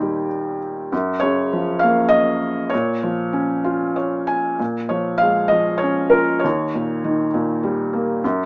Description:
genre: classical, lyrical solo piano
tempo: 99 BPM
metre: 3/4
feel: rubato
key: Bb minor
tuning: A4 = 440 Hz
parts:
  - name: felt-muted upright piano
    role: solo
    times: 0.0-8.5 s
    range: Eb2 to Ab5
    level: -20 LUFS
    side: equal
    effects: none
room: light reverb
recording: small speaker sound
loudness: -20 LUFS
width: mono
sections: 0.0-4.6 A section; 4.6-8.5 B section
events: felt piano fill 3.6-4.6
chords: 0.0 Eb; 0.9 Gbmaj7; 2.7 Bbm; 4.6 Bbm7; 6.4 Eb7

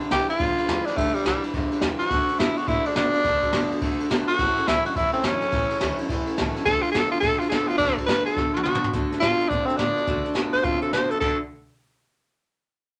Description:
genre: rockabilly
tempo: 211 BPM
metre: 4/4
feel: swing 63% on 8ths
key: D major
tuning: A4 = 440 Hz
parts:
  - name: picked steel-string acoustic guitar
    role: accompaniment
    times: 0.0-11.4 s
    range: A2 to B4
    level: -35 LUFS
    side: equal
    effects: none
  - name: electric guitar through a small old amp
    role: riff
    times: 0.0-11.4 s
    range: G2 to F#4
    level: -31 LUFS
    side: equal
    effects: none
  - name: upright bass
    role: bass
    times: 0.0-11.4 s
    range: G1 to B2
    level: -38 LUFS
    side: equal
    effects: none
  - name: jazz brush drum kit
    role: drums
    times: 0.0-11.3 s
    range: crash cymbal, hi-hat, kick drum, ride cymbal, snare drum, toms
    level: -30 LUFS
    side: equal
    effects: none
  - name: raspy tenor saxophone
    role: melody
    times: 0.1-11.4 s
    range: G3 to C5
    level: -25 LUFS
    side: equal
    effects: none
room: moderate small room reverb, RT60 0.5 s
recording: none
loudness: -23 LUFS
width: mono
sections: 0.0-8.9 A section; 8.9-11.2 B section; 11.2-12.4 C section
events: drum fill 8.4-8.9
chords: 0.0 G; 2.1 D; 4.4 A; 6.7 D

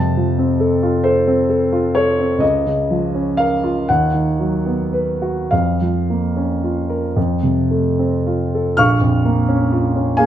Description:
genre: classical, romantic nocturne for solo piano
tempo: 34-47 BPM (dotted quarters)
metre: 6/8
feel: rubato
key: Bb minor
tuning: A4 = 442 Hz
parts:
  - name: warm concert grand piano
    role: solo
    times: 0.0-10.3 s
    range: Bb1 to F6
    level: -15 LUFS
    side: equal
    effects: none
room: moderate recital hall reverb, RT60 1.3 s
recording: minimal, uncompressed stereo recording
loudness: -15 LUFS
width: side -11 dB against mid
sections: 0.0-8.8 A section; 8.8-10.3 B section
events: none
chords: 0.0 F; 2.4 Bbm/Db; 3.9 B/D#; 5.5 Bbm/F; 7.2 F; 8.8 Bbm

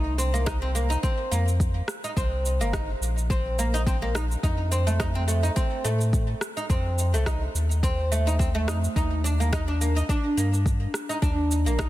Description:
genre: organic downtempo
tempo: 106 BPM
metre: 4/4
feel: swing 55% on 16ths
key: C dorian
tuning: A4 = 440 Hz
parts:
  - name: oud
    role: arpeggios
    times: 0.0-11.9 s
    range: A3 to Eb4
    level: -28 LUFS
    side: right 1 dB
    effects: digital delay
  - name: warm sub bass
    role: bass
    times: 0.0-11.9 s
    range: G1 to A2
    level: -24 LUFS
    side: equal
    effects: sidechain pumping
  - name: electronic shaker and rim click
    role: drums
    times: 0.2-11.9 s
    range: none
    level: -34 LUFS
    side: right 1 dB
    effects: overdrive
  - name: electronic kick drum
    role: drums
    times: 0.5-11.9 s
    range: none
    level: -26 LUFS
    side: equal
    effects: overdrive
room: digital ambience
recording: dense, heavily limited modern master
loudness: -22 LUFS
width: side -15 dB against mid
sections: 0.0-11.9 A section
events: none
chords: 0.0 Cm7; 4.4 F7; 9.0 Ebmaj7

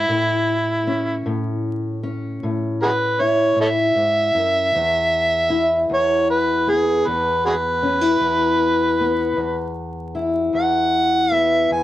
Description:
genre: acoustic country blues, solo or duo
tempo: 52 BPM (dotted quarters)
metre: 12/8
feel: straight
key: E major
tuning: A4 = 440 Hz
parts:
  - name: overdriven harmonica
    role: melody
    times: 0.0-11.8 s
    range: E4 to G#5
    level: -18 LUFS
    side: right 1 dB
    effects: none
  - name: fingerpicked steel-string acoustic guitar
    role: accompaniment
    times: 0.0-11.8 s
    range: E2 to E4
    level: -21 LUFS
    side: left 2 dB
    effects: none
room: moderate studio reverb, RT60 0.6 s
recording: dark, warm production, vinyl crackle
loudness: -17 LUFS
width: side -13 dB against mid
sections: 0.0-11.8 A section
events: none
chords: 0.1 A; 4.7 E5

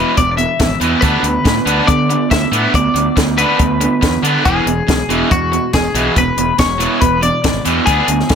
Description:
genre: indie rock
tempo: 140 BPM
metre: 4/4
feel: straight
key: E mixolydian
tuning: A4 = 441 Hz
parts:
  - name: twelve-string electric guitar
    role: melody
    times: 0.0-8.3 s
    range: F#4 to E5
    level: -17 LUFS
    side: left 4 dB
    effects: lush chorus, analog delay
  - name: raw garage guitar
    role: riff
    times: 0.0-8.3 s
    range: E2 to D4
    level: -16 LUFS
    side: right 3 dB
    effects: overdrive
  - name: fuzz fingered electric bass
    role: bass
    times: 0.2-8.3 s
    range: E1 to D3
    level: -20 LUFS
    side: equal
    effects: overdrive
  - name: compact cocktail drum kit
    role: drums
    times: 0.2-8.3 s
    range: hi-hat, kick drum, snare drum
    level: -17 LUFS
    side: equal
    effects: none
room: light reverb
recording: none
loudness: -12 LUFS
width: side -7 dB against mid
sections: 0.0-8.3 A section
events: none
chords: 0.0 E; 1.0 Bm/D; 4.4 E

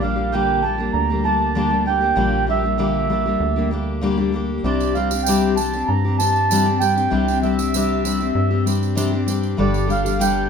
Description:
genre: acoustic folk duo or small band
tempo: 97 BPM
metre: 4/4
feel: straight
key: C mixolydian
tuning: A4 = 438 Hz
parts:
  - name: mellow accordion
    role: second line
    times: 0.0-10.5 s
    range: D5 to Bb5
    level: -21 LUFS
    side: right 5 dB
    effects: none
  - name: picked steel-string acoustic guitar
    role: accompaniment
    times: 0.0-10.5 s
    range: G2 to A4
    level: -21 LUFS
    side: left 4 dB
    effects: none
  - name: rubbery square bass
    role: bass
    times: 0.0-10.5 s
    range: G1 to G2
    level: -23 LUFS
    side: right 1 dB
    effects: none
  - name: tambourine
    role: percussion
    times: 4.8-10.4 s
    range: none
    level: -29 LUFS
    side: right 9 dB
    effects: none
room: moderate large studio reverb, RT60 1.3 s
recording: minimal, uncompressed stereo recording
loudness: -17 LUFS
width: side -6 dB against mid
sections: 0.0-10.5 A section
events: accordion solo 0.0-10.5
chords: 0.0 Gm/Bb; 4.7 Csus2; 9.6 Gsus2

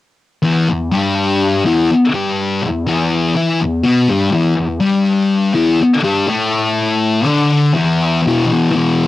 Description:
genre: rock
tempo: 123 BPM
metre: 4/4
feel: straight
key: E minor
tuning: A4 = 440 Hz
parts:
  - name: thick fuzz guitar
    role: solo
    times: 0.4-9.1 s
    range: E2 to E4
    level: -12 LUFS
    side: left 2 dB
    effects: distortion
room: moderate small room reverb, RT60 0.5 s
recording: home recording on cassette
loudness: -12 LUFS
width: side -15 dB against mid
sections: 0.4-8.2 A section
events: none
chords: 0.4 Em; 8.2 E5

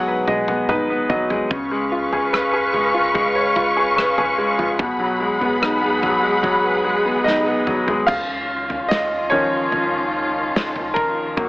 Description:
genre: pop ballad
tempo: 73 BPM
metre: 4/4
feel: straight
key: unclear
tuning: A4 = 439 Hz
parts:
  - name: bright grand piano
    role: accompaniment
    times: 0.0-11.5 s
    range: B2 to G#5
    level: -19 LUFS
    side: equal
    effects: none
  - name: warm sub bass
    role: bass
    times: 0.0-11.5 s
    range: F#1 to D#2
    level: -42 LUFS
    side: equal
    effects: none
  - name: natural country drum kit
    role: drums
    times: 0.3-11.5 s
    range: crash cymbal, kick drum, rim click, snare drum, toms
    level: -26 LUFS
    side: equal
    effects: none
  - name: warm studio string section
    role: sustained chords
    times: 1.5-11.5 s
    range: D#3 to C#6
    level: -20 LUFS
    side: equal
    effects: none
room: moderate lush hall reverb, RT60 2.6 s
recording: AM radio sound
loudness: -17 LUFS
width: side -20 dB against mid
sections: 0.0-8.1 A section; 8.1-11.5 B section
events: grand piano fill 0.0-1.5; drum fill 0.0-1.5, 7.3-8.1; grand piano solo 8.1-11.5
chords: 0.0 G#m7/B; 1.5 C#7; 4.8 G#m7/B; 8.1 C#add9

